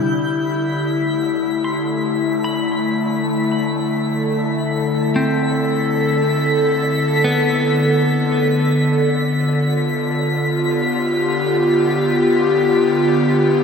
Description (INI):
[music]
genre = ambient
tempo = 56 BPM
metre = 4/4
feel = straight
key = D dorian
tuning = A4 = 439 Hz
[part]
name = airy breathy pad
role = sustained chords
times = 0.0-13.6 s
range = D3 to A4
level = -16 LUFS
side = left 1 dB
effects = chorus
[part]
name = twinkling granular texture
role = texture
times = 0.0-13.6 s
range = B6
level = -26 LUFS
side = left 2 dB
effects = built-in reverb
[part]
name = clean electric guitar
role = arpeggios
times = 1.6-10.3 s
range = B3 to C6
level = -25 LUFS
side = left 2 dB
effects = spring reverb, analog delay
[sound]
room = wet echo chamber reverb, RT60 2.2 s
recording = echo-heavy mix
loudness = -16 LUFS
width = side -6 dB against mid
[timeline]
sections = 0.0-13.6 A section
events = none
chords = 0.0 Dsus2; 8.6 G7